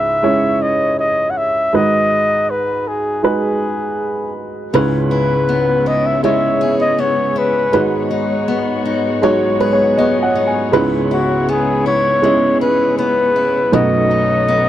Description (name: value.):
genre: pop.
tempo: 80 BPM.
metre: 4/4.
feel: straight.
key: C# minor.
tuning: A4 = 440 Hz.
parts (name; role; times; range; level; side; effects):
mellow flugelhorn; melody; 0.0-14.7 s; F#4 to F#5; -16 LUFS; left 1 dB; none.
warm upright piano; accompaniment; 0.0-14.7 s; B1 to G#5; -17 LUFS; right 2 dB; none.
dark studio string section; sustained chords; 4.7-14.7 s; G#2 to C#5; -21 LUFS; left 2 dB; none.
picked steel-string acoustic guitar; arpeggios; 4.7-14.7 s; G#2 to G#4; -22 LUFS; left 5 dB; none.
room: little or no reverb.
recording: dry, close 1970s-style studio recording.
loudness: -13 LUFS.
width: side -12 dB against mid.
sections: 0.0-14.7 A section.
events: upright piano fill 9.2-10.7.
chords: 0.0 C#m7; 1.7 G#m7; 4.7 C#m7; 7.7 G#m7; 10.7 C#m7; 13.7 B7.